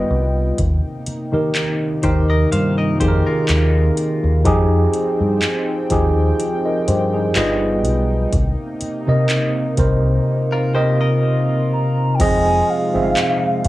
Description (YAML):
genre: contemporary R&B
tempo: 62 BPM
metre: 4/4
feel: swing 54% on 16ths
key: F minor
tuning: A4 = 440 Hz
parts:
  - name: tine electric piano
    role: accompaniment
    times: 0.0-13.7 s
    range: C3 to F5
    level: -18 LUFS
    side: equal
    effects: medium stereo tremolo, cassette tape
  - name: warm analog pad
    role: sustained chords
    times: 0.0-13.7 s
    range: C3 to G5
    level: -26 LUFS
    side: equal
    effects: chorus, sidechain pumping, cassette tape
  - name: deep dub fingered electric bass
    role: bass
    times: 0.1-13.7 s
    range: F1 to Eb3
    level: -18 LUFS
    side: equal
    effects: none
  - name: booming analog drum machine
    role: drums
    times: 0.6-13.7 s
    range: crash cymbal, handclaps, hi-hat, kick drum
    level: -21 LUFS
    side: equal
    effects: cassette tape
  - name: direct-recorded clean electric guitar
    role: arpeggios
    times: 2.0-4.4, 10.5-12.2 s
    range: F4 to F5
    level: -27 LUFS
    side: left 4 dB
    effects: cassette tape, tape echo
  - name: hollow clarinet-like synth lead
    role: melody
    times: 11.7-13.7 s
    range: F5 to Bb5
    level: -20 LUFS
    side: right 1 dB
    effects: chorus, cassette tape
room: light reverb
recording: home recording on cassette, small room ambience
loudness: -15 LUFS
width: side -16 dB against mid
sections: 0.0-12.2 A section; 12.2-13.7 B section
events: none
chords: 0.0 G7b13; 0.6 Cm7/Eb; 7.4 G7b13; 8.3 Cm7; 12.2 Fm7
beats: | 0.58 1.55 2.52 3.49 | 4.46 5.42 6.39 7.36 | 8.33 9.29 10.26 11.23 | 12.20 13.16